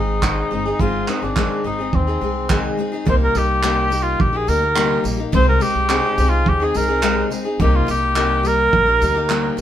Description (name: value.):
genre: acoustic pop.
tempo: 106 BPM.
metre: 4/4.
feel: straight.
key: unclear.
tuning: A4 = 437 Hz.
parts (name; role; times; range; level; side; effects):
mellow cor anglais; melody; 0.0-9.6 s; C4 to C5; -19 LUFS; equal; none.
picked steel-string acoustic guitar; accompaniment; 0.0-9.6 s; Ab2 to Ab4; -22 LUFS; left 3 dB; none.
upright bass; bass; 0.0-9.6 s; G1 to Eb2; -22 LUFS; equal; none.
cloth-damped thuddy drum kit; drums; 0.2-9.6 s; handclaps, kick drum, tambourine; -22 LUFS; right 2 dB; none.
room: moderate studio reverb, RT60 0.6 s.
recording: band playing live in one room.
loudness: -16 LUFS.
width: side -11 dB against mid.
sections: 0.0-3.1 A section; 3.1-9.6 B section.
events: none.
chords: 0.0 Ab; 3.1 Eb/C; 5.3 Ab/C; 7.6 Eb/C.